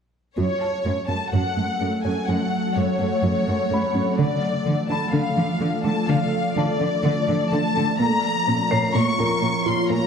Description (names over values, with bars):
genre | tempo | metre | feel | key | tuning
cinematic | 126 BPM | 4/4 | straight | unclear | A4 = 440 Hz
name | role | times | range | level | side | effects
warm symphonic violin section | melody | 0.4-10.1 s | C#5 to C#6 | -25 LUFS | left 3 dB | none
ethereal airy pad | sustained chords | 1.0-10.1 s | F3 to F#5 | -25 LUFS | equal | ensemble chorus, built-in reverb
resonant blip pluck | arpeggios | 0.4-10.0 s | D3 to A#4 | -27 LUFS | equal | phaser, digital delay
rich symphonic cello section | bass | 0.4-10.0 s | F#2 to D3 | -26 LUFS | right 3 dB | none
dark grand piano | texture | 0.6-10.1 s | A#4 to B#6 | -32 LUFS | right 1 dB | none
room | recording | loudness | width
wet recital hall reverb, RT60 1.6 s | dark, warm production | -20 LUFS | side -6 dB against mid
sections
0.4-10.1 A section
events
none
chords
0.4 F#m; 4.2 Dm; 8.0 A#m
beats
| 0.38 0.85 1.33 1.80 | 2.28 2.76 3.23 3.71 | 4.18 4.66 5.14 5.61 | 6.09 6.57 7.04 7.52 | 8.00 8.47 8.95 9.42 | 9.90